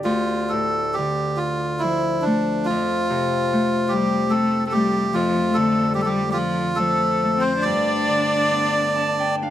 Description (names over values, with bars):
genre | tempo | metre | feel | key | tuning
celtic folk, Celtic slow air | 71 BPM | 3/4 | uneven beats, rubato | D dorian | A4 = 440 Hz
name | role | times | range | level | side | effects
melodica | melody | 0.0-9.4 s | D4 to D5 | -22 LUFS | right 2 dB | none
Celtic harp | accompaniment | 0.0-9.5 s | D2 to A5 | -23 LUFS | left 2 dB | none
clear cello | second line | 3.9-9.3 s | F3 to D4 | -24 LUFS | left 2 dB | none
room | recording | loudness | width
moderate recital hall reverb, RT60 1.6 s | close, detailed microphones | -18 LUFS | side -11 dB against mid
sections
0.0-9.5 A section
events
harp fill 8.5-9.5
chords
0.0 Dm; 2.7 F; 5.2 Dm/F; 7.7 G